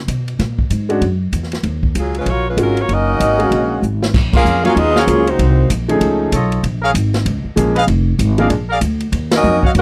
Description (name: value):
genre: jazz, big band swing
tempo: 192 BPM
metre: 4/4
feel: swing 62% on 8ths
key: Eb minor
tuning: A4 = 441 Hz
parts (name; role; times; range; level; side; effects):
- upright bass; bass; 0.0-9.8 s; F1 to Cb3; -20 LUFS; equal; none
- swinging big-band drum kit; drums; 0.1-9.8 s; crash cymbal, hi-hat, kick drum, ride cymbal, snare drum; -22 LUFS; equal; none
- clear grand piano; accompaniment; 0.9-8.5 s; F3 to F5; -19 LUFS; equal; none
- bright saxophone section; melody; 2.0-5.7, 9.4-9.8 s; Gb3 to Gb5; -19 LUFS; equal; none
- mellow trombone section; second line; 2.9-5.7, 9.3-9.8 s; Eb3 to Gb4; -23 LUFS; equal; none
- warm trumpet section; stabs; 4.6-9.7 s; F4 to F5; -20 LUFS; equal; none
room: light reverb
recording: dry, close 1970s-style studio recording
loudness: -16 LUFS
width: mono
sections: 0.0-4.1 A section; 4.1-9.8 B section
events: drum fill 3.8-4.1; band accent 4.3, 9.3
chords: 0.4 Bb7(#5, no3); 1.6 Ebm11; 4.1 Gbmaj9; 5.4 Cm7b5; 6.0 F7alt; 6.6 Bbm7; 7.9 Fmadd11; 8.5 Bb7; 9.1 Ebm9